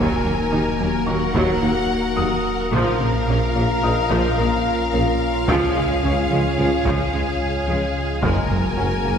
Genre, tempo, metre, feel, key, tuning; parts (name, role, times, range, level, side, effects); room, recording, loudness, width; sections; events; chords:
cinematic, hybrid orchestral and electronic film score; 109 BPM; 5/4; straight; Bb minor; A4 = 441 Hz
rich symphonic violin section; melody; 0.0-9.2 s; F5 to Ab5; -27 LUFS; left 4 dB
clear symphonic violin section; second line; 0.0-9.2 s; Ab4 to Bb4; -27 LUFS; left 2 dB
rich symphonic viola section; accompaniment; 0.0-9.1 s; F3 to Eb4; -27 LUFS; equal
mellow French horn section; sustained chords; 0.0-9.2 s; Bb3 to Ab4; -27 LUFS; left 1 dB
warbly tape-like pad; sustained chords; 0.1-9.2 s; Ab3 to Db5; -27 LUFS; left 1 dB; chorus, built-in reverb
tight sequenced synth; arpeggios; 0.0-9.2 s; Db3 to Bb4; -31 LUFS; equal
clear symphonic cello section; bass; 0.0-9.1 s; Eb2 to Db3; -29 LUFS; right 2 dB
dark symphonic double bass section; bass; 0.0-9.1 s; Gb1 to Eb2; -27 LUFS; right 1 dB
pure sine sub bass; bass; 0.0-9.2 s; Eb1 to Db2; -28 LUFS; equal
warm tuba; bass; 0.0-9.2 s; Gb1 to Eb2; -28 LUFS; right 3 dB
felt-muted upright piano; texture; 1.1-9.2 s; Eb5 to F6; -33 LUFS; left 3 dB; ping-pong delay
taiko ensemble; drums; 1.3-8.7 s; -29 LUFS; equal
wet scoring stage reverb, RT60 2.2 s; heard from further back in the room; -18 LUFS; side -7 dB against mid
0.0-9.2 A section
0.0 Ebm; 2.7 Bbm; 5.5 Db; 8.2 Gbadd9